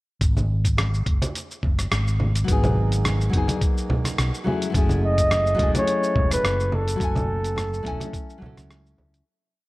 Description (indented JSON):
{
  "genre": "sunset chillout",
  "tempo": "106 BPM",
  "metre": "4/4",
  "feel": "swing 54% on 16ths",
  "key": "G# phrygian",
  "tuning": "A4 = 440 Hz",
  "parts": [
    { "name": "mellow fretless electric bass", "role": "bass", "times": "0.2-9.2 s", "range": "E1 to C#2", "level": "-23 LUFS", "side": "equal", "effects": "none" },
    { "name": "dusty soul sampler-style drum kit", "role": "drums", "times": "0.2-9.2 s", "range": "congas, hi-hat, rim click, shaker", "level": "-28 LUFS", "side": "equal", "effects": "none" },
    { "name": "electronic kick drum", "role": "drums", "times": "0.2-8.3 s", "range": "none", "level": "-23 LUFS", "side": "equal", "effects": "none" },
    { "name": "congas", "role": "percussion", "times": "0.4-9.1 s", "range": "none", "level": "-30 LUFS", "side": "right 1 dB", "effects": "none" },
    { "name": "nylon-string guitar", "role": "accompaniment", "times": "2.4-9.3 s", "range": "F#3 to G#5", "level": "-27 LUFS", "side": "left 2 dB", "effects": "auto-pan" },
    { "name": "breathy flugelhorn", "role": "melody", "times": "5.1-8.7 s", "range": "A4 to D#5", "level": "-24 LUFS", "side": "equal", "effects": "none" }
  ],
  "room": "light reverb, small room ambience",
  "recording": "worn, warbling old tape, cassette tape, warbly pitch drift",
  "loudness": "-20 LUFS",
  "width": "side -20 dB against mid",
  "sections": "0.2-9.3 groove",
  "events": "fade-out 6.3-9.3",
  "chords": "0.2 G#m9; 4.5 F#m9"
}